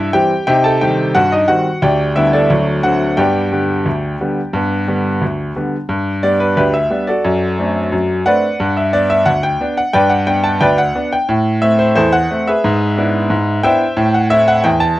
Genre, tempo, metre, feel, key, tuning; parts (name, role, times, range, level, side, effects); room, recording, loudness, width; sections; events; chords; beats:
ragtime piano; 89 BPM; 2/4; straight; G major; A4 = 440 Hz
bright baby grand piano; solo; 0.0-15.0 s; D2 to A5; -12 LUFS; equal
little or no reverb; close, detailed microphones; -12 LUFS; side -16 dB against mid
0.0-5.9 A section; 5.9-15.0 B section
0.5 Cm; 1.8 G/D; 2.5 D7; 3.2 G; 7.3 D7/F#; 8.6 G; 11.3 Am; 12.6 E7/G#; 14.0 Am
| 0.47 1.15 | 1.82 2.50 | 3.17 3.86 | 4.54 5.22 | 5.90 6.58 | 7.25 7.93 | 8.60 9.27 | 9.95 10.62 | 11.29 11.96 | 12.64 13.31 | 13.98 14.65